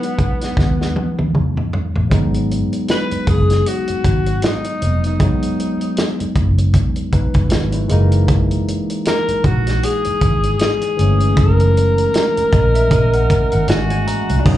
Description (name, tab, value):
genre	lush 1970s-style soul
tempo	78 BPM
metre	4/4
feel	swing 58% on 16ths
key	unclear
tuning	A4 = 439 Hz
part	breathy tenor saxophone	melody	0.0-14.6 s	B3 to B4	-19 LUFS	left 1 dB	slapback echo, plate reverb
part	barky tine electric piano	accompaniment	0.0-14.6 s	E3 to A#5	-22 LUFS	left 1 dB	overdrive, plate reverb, slapback echo
part	warm soul drum kit	drums	0.0-14.6 s	crash cymbal, hi-hat, kick drum, snare drum, toms	-18 LUFS	equal	none
part	vintage muted fingered electric bass	bass	0.6-14.6 s	E1 to E2	-16 LUFS	equal	none
room	light reverb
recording	live gig heard through the venue's PA, club reverb, nothing above 10.9 kHz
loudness	-14 LUFS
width	side -13 dB against mid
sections	0.0-2.1 A section; 2.1-14.5 B section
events	drum fill 0.6-2.1; tine electric piano fill 12.1-14.5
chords	0.0 Emaj7; 2.1 G#m9; 5.2 Emaj7; 7.9 F#13